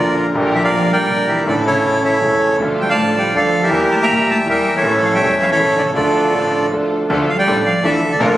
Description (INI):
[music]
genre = tango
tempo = 160 BPM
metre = 3/4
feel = rubato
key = D harmonic minor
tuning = A4 = 438 Hz
[part]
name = bandoneon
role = melody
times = 0.0-8.4 s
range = D4 to Bb5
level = -15 LUFS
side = right 1 dB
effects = none
[part]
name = warm cello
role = second line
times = 0.0-8.4 s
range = A2 to Bb3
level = -22 LUFS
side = left 1 dB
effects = none
[part]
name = bright grand piano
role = accompaniment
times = 0.0-8.4 s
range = E1 to A4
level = -20 LUFS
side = left 1 dB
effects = none
[part]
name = muted studio string section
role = stabs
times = 0.0-8.4 s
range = C#4 to Bb4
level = -23 LUFS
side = right 2 dB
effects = none
[part]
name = upright bass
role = bass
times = 0.0-8.4 s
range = E1 to E2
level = -31 LUFS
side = right 1 dB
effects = none
[sound]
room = moderate studio reverb, RT60 0.8 s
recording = recorded on a phone in the room, studio reverb, compression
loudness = -13 LUFS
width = side -14 dB against mid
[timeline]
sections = 0.0-7.1 A section; 7.1-8.4 A section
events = none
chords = 0.3 Gm/Bb; 1.5 Asus4; 1.8 A; 2.6 Dm; 3.7 Edim; 4.8 A; 6.0 Dm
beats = | 0.34 0.72 1.09 | 1.46 1.83 2.21 | 2.59 2.97 3.35 | 3.72 4.09 4.47 | 4.84 5.21 5.58 | 5.95 6.32 6.70 | 7.08 7.46 7.83 | 8.20